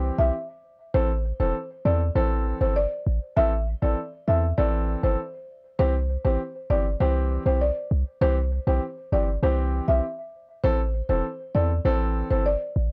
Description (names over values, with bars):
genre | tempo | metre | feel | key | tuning
dancehall | 99 BPM | 4/4 | straight | A minor | A4 = 440 Hz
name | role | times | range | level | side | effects
warm grand piano | accompaniment | 0.0-12.5 s | E3 to A4 | -32 LUFS | equal | none
warm 808-style bass | bass | 0.0-12.9 s | E1 to E2 | -26 LUFS | equal | none
buzzing marimba with soft mallets | melody | 0.2-12.9 s | C5 to E5 | -29 LUFS | equal | none
room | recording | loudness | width
little or no reverb | dry, gritty hardware recording, cassette tape | -25 LUFS | mono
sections
0.0-12.9 A section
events
none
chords
0.0 C; 0.9 Am; 5.8 C; 10.6 Am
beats
0.34 | 0.94 1.55 2.15 2.76 | 3.37 3.97 4.58 5.18 | 5.79 6.40 7.00 7.61 | 8.22 8.82 9.43 10.03 | 10.64 11.25 11.85 12.46